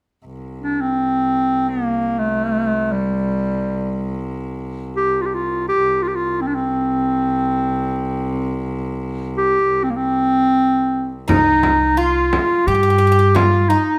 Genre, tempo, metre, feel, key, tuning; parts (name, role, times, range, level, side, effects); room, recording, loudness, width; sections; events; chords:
Turkish makam ensemble; free time; C makam huseyni; A4 = 440 Hz
rich cello; drone; 0.2-11.4 s; C2; -30 LUFS; equal
clear clarinet; melody; 0.6-14.0 s; G3 to G4; -19 LUFS; equal
Greek bouzouki; second line; 11.3-14.0 s; Eb4 to G4; -27 LUFS; equal
upright bass; bass; 11.3-13.7 s; C2 to G2; -21 LUFS; equal
frame drum; percussion; 11.3-13.5 s; -24 LUFS; equal
light reverb; -18 LUFS; mono
0.2-11.3 A section; 11.3-14.0 B section